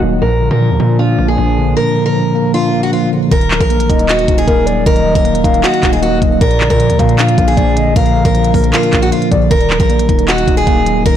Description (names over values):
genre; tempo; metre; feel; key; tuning
hip hop, trap; 155 BPM; 4/4; half-time; Eb harmonic minor; A4 = 440 Hz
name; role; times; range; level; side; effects
mellow tine electric piano; accompaniment; 0.0-11.2 s; Bb2 to Eb5; -15 LUFS; equal; medium stereo tremolo, low-pass filter
mellow French horn section; sustained chords; 0.0-3.3 s; Eb3 to Gb4; -26 LUFS; equal; low-pass filter
hard-hitting 808-style bass; bass; 0.0-11.2 s; Eb1 to Bb2; -16 LUFS; equal; none
picked steel-string acoustic guitar; melody; 0.2-11.2 s; F4 to Bb4; -17 LUFS; right 1 dB; low-pass filter, ping-pong delay
hollow clarinet-like synth lead; second line; 3.3-9.5 s; Bb4 to F5; -18 LUFS; left 2 dB; chorus, ping-pong delay
trap drum kit; drums; 3.3-11.1 s; handclaps, hi-hat, kick drum; -14 LUFS; equal; vintage 12-bit sampler grit
room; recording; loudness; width
light reverb; blown-out, overdriven recording, overdrive; -10 LUFS; side -10 dB against mid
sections
0.0-3.3 A section; 3.3-11.2 B section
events
filter sweep 0.0-3.3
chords
0.2 Bb; 3.3 Ebm; 6.4 Bb; 9.5 Ebm